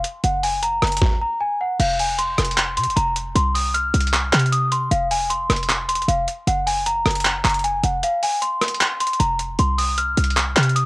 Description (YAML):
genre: hip hop, trap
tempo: 154 BPM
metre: 4/4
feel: half-time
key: F minor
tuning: A4 = 437 Hz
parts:
  - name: short 808-style bass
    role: bass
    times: 0.0-10.9 s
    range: F1 to C3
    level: -22 LUFS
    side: equal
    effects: none
  - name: boom bap sampler-style drum kit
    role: drums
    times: 0.0-10.8 s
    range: crash cymbal, handclaps, hi-hat, kick drum, rim click, snare drum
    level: -21 LUFS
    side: equal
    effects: cassette tape
  - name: celesta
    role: melody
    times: 0.2-10.9 s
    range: F5 to F6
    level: -21 LUFS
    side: left 1 dB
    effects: cassette tape
room: light reverb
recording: home recording on cassette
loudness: -18 LUFS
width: side -22 dB against mid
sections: 0.0-1.8 A section; 1.8-10.9 B section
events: kick muted 8.0-8.8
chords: 0.2 Gb; 1.8 F5; 3.4 Csus4; 4.9 F5; 6.5 Gb; 8.0 F5; 9.6 Csus4